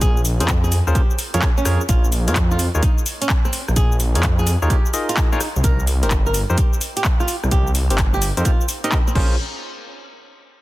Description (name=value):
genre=UK garage, two-step garage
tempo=128 BPM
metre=4/4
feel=swing 66% on 16ths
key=unclear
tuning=A4 = 440 Hz
part: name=flamenco guitar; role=melody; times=0.0-9.3 s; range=C4 to Bb4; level=-27 LUFS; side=right 2 dB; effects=tape echo
part: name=dark detuned saw bass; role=bass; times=0.0-9.4 s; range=G1 to F2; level=-19 LUFS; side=equal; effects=tube saturation
part: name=electronic kick drum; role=drums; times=0.0-9.3 s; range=none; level=-18 LUFS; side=equal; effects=none
part: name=garage drum kit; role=drums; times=0.0-9.3 s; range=crash cymbal, handclaps, hi-hat, rim click, shaker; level=-24 LUFS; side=left 1 dB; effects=none
part: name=barky tine electric piano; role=stabs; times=0.4-9.3 s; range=C4 to Eb5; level=-27 LUFS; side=left 1 dB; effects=medium stereo tremolo, dub echo
room=digital ambience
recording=dense, heavily limited modern master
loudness=-16 LUFS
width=side -18 dB against mid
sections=0.0-9.4 A section; 9.4-10.6 B section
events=drop 0.0-9.4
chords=0.0 Bbm7; 1.9 Ebsus4/Bb; 5.4 Cm7; 9.2 Bbm9; 9.4 N.C.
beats=| 0.01 0.48 0.95 1.42 | 1.89 2.36 2.83 3.30 | 3.76 4.23 4.70 5.17 | 5.64 6.11 6.58 7.05 | 7.51 7.98 8.45 8.92